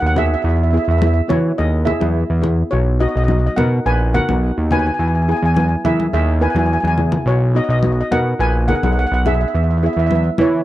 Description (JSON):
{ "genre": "calypso", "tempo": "106 BPM", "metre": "4/4", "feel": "straight", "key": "unclear", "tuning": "A4 = 440 Hz", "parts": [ { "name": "steel pan", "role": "melody", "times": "0.0-10.6 s", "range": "E4 to G#5", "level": "-20 LUFS", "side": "right 1 dB", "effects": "tape echo" }, { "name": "fat analog bass", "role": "bass", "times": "0.0-10.6 s", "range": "A#1 to E3", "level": "-16 LUFS", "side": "equal", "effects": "none" }, { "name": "steel pan", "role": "accompaniment", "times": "0.2-10.6 s", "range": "B3 to B4", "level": "-23 LUFS", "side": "equal", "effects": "none" }, { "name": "congas", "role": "percussion", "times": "0.2-10.5 s", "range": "none", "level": "-23 LUFS", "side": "left 3 dB", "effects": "none" } ], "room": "little or no reverb", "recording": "dry, close 1970s-style studio recording", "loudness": "-14 LUFS", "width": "side -14 dB against mid", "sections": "0.0-10.6 A section", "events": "drum fill 6.8-7.3", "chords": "0.4 Emaj7; 2.7 Bmaj7; 5.0 Emaj7; 7.3 Bmaj7; 9.5 E", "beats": "| 0.44 1.01 1.58 2.15 | 2.72 3.29 3.86 4.43 | 5.00 5.56 6.13 6.70 | 7.27 7.84 8.40 8.97 | 9.54 10.11" }